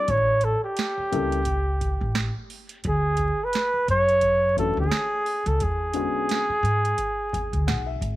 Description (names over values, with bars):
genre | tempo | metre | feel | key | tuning
hip hop, jazz-hop | 87 BPM | 4/4 | swing 58% on 16ths | A major | A4 = 440 Hz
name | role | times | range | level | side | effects
breathy flugelhorn | melody | 0.0-8.0 s | G4 to D5 | -23 LUFS | right 1 dB | none
dark concert grand piano | accompaniment | 0.0-8.2 s | D3 to G#5 | -30 LUFS | left 7 dB | none
upright bass | bass | 0.1-8.2 s | G#1 to G#2 | -26 LUFS | equal | none
booming analog drum machine | drums | 0.1-8.2 s | hi-hat, kick drum, snare drum | -31 LUFS | right 2 dB | none
room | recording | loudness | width
light reverb, small room ambience | 1960s-style stereo, vinyl crackle | -21 LUFS | side -16 dB against mid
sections
0.0-8.2 A section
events
grand piano fill 7.0-8.2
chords
0.1 A7; 2.8 Dmaj7; 5.6 E13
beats
| 0.09 0.77 1.46 2.15 | 2.84 3.53 4.22 4.91 | 5.60 6.29 6.98 7.67